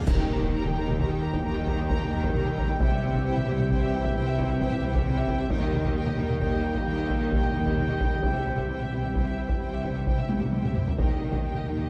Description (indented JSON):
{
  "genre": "cinematic, epic orchestral film score",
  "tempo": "88 BPM (dotted quarters)",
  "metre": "12/8",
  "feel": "straight",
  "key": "Eb major",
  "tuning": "A4 = 439 Hz",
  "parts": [
    { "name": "rich symphonic violin section", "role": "second line", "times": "0.0-11.9 s", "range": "G4 to E5", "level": "-42 LUFS", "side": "equal", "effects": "none" },
    { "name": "rich symphonic viola section", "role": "accompaniment", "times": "0.0-11.9 s", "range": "Eb4 to G4", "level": "-42 LUFS", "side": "equal", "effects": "none" },
    { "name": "reverse cymbal and impact", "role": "sound effects", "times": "0.0-2.8 s", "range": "none", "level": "barely audible", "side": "none", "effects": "none" },
    { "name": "clear symphonic violin section", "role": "melody", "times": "0.1-11.9 s", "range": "Eb5 to Bb5", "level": "-41 LUFS", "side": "equal", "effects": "none" },
    { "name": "mellow French horn section", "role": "sustained chords", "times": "0.1-11.9 s", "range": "Bb3 to G4", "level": "-38 LUFS", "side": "equal", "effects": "none" },
    { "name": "mellow trombone section", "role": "sustained chords", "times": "0.1-11.9 s", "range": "Eb3 to G3", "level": "-39 LUFS", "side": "equal", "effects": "none" },
    { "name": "warm trumpet", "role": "stabs", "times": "0.1-11.9 s", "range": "G5", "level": "-40 LUFS", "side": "equal", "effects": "none" },
    { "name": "rich symphonic cello section", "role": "bass", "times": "0.1-11.9 s", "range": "C3 to Eb3", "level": "-34 LUFS", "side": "equal", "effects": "none" },
    { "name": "rich symphonic double bass section", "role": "bass", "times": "0.1-11.9 s", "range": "C2 to Eb2", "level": "-34 LUFS", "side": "equal", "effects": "none" },
    { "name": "taiko ensemble", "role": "drums", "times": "0.1-11.9 s", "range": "none", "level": "-30 LUFS", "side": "equal", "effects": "none" },
    { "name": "clash cymbals and concert bass drum", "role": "percussion", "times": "0.1-0.9 s", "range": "none", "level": "-35 LUFS", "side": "equal", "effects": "none" }
  ],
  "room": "moderate recital hall reverb, RT60 1.4 s",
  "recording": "dark, warm production",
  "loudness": "-26 LUFS",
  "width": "mono",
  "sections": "0.1-11.9 A section",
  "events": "band accent 0.1-0.5; impact 0.1-2.8; drum fill 10.3-11.0",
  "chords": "0.1 Eb; 2.8 C; 5.5 Eb; 8.2 C; 11.0 Eb"
}